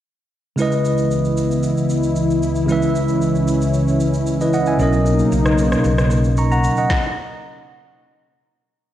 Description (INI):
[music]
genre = amapiano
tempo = 114 BPM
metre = 4/4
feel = straight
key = C# dorian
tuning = A4 = 438 Hz
[part]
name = bell-like tine electric piano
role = accompaniment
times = 0.6-7.0 s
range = B2 to C#6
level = -18 LUFS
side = equal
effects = medium stereo tremolo
[part]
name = warm analog pad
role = sustained chords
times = 0.6-6.9 s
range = C#2 to E4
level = -20 LUFS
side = equal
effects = chorus
[part]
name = smooth R&B drum kit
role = drums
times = 0.6-7.0 s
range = kick drum, rim click, shaker, snare drum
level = -28 LUFS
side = equal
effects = none
[part]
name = hollow-body short-scale fingered electric bass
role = bass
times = 4.8-6.7 s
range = B1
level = -19 LUFS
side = equal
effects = none
[sound]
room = wet lush hall reverb, RT60 1.8 s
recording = dreamy mix soaked in reverb, cassette tape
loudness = -15 LUFS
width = side -12 dB against mid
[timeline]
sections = 0.6-8.9 A section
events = stop 6.9-8.9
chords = 0.6 C#m9; 4.8 Bmaj9